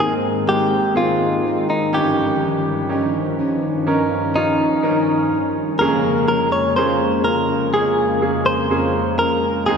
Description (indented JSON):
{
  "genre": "pop ballad",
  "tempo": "62 BPM",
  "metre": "4/4",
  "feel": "straight",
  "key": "unclear",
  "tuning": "A4 = 439 Hz",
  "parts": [
    { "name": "direct-recorded clean electric guitar", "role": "melody", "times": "0.0-9.8 s", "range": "Eb4 to Db5", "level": "-20 LUFS", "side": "left 1 dB", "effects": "none" },
    { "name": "bright upright piano", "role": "accompaniment", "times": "0.0-9.8 s", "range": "F1 to Bb4", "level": "-21 LUFS", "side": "right 3 dB", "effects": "none" },
    { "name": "sweeping resonant pad", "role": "sustained chords", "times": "0.0-9.8 s", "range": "Eb2 to Db4", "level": "-23 LUFS", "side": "left 2 dB", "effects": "chorus" },
    { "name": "fingerpicked plugged-in steel-string acoustic guitar", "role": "arpeggios", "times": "0.0-9.8 s", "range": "F2 to Bb4", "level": "-26 LUFS", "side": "left 4 dB", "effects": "none" }
  ],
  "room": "wet church reverb, RT60 3.1 s",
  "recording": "recorded in a church or concert hall",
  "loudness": "-16 LUFS",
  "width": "side -6 dB against mid",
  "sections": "0.0-9.8 A section",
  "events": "none",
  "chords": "0.0 Abadd9; 1.9 Eb7/G; 5.8 Bbm7/F"
}